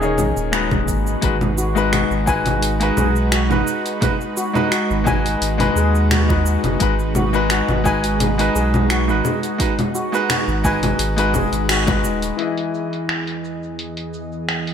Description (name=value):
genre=sunset chillout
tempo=86 BPM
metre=4/4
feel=straight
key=G# minor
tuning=A4 = 440 Hz
part: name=mellow flugelhorn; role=melody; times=0.0-0.9 s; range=G#4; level=-28 LUFS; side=right 2 dB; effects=ping-pong delay
part: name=bright concert grand piano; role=accompaniment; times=0.0-14.7 s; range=D#3 to D#5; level=-21 LUFS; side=moving between left 7 dB and right 5 dB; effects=auto-pan, low-pass filter, ping-pong delay
part: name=lush unison pad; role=sustained chords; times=0.0-14.7 s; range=E2 to D#5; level=-25 LUFS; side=right 1 dB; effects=chorus
part: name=warm sub bass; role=bass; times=0.0-12.3 s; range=D#1 to D#2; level=-21 LUFS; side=equal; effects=none
part: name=deep house drum kit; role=drums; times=0.0-14.7 s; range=cabasa, congas, finger snaps, hi-hat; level=-22 LUFS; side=equal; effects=low-pass filter on perc, low-pass filter on snare, low-pass filter on hats, low-pass filter on room, gated reverb
part: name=electronic kick drum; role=drums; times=0.7-12.0 s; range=none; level=-23 LUFS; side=equal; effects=none
part: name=steel pan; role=arpeggios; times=1.6-12.0 s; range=F#4 to G#5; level=-26 LUFS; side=left 2 dB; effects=ping-pong delay
part: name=bongos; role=percussion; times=2.3-12.0 s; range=none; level=-30 LUFS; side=left 1 dB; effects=none
room=moderate plate reverb, RT60 1.9 s, small room ambience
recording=bright 1980s-style digital production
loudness=-16 LUFS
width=side -8 dB against mid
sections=0.0-12.4 A section; 12.4-14.7 B section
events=band accent 11.7-12.0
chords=0.0 D#7sus4; 0.9 G#m7; 12.4 Emaj7